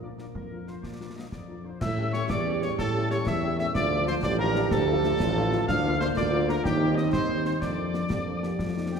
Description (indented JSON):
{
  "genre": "military-style march for wind band",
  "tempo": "124 BPM (dotted quarters)",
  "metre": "6/8",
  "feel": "straight",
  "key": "Bb major from 5.7 s",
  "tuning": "A4 = 443 Hz",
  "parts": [
    { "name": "warm cornet", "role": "melody", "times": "0.0-9.0 s", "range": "G4 to F5", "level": "-33 LUFS", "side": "right 1 dB", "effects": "none" },
    { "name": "warm euphonium", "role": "second line", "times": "0.0-9.0 s", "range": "Bb3 to G4", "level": "-32 LUFS", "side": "right 6 dB", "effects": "none" },
    { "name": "warm woodwind section", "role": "second line", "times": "0.0-9.0 s", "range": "G4 to F5", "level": "-36 LUFS", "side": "left 1 dB", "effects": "none" },
    { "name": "mellow French horn section", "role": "accompaniment", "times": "0.0-9.0 s", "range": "F3 to G4", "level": "-35 LUFS", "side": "left 4 dB", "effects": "none" },
    { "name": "mellow tuba", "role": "bass", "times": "0.0-9.0 s", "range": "A1 to Bb2", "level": "-29 LUFS", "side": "equal", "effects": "none" },
    { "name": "concert snare drum, concert bass drum and clash cymbals", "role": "drums", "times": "0.2-9.0 s", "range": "none", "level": "-34 LUFS", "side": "left 1 dB", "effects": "none" },
    { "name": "mellow piccolo", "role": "second line", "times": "1.8-9.0 s", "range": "G5 to F6", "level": "-34 LUFS", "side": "left 2 dB", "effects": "none" },
    { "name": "mellow trombone section", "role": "sustained chords", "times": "1.8-9.0 s", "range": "F3 to D4", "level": "-36 LUFS", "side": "right 1 dB", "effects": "none" }
  ],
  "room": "wet concert hall reverb, RT60 2.0 s",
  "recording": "heard from further back in the room",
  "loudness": "-23 LUFS",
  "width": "side -6 dB against mid",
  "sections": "0.0-1.8 A section; 1.8-9.0 B section",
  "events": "none",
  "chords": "0.0 Bb; 1.8 A7; 3.7 Dm; 5.7 Bb/D; 6.7 Cm/Eb; 7.6 Bb/F"
}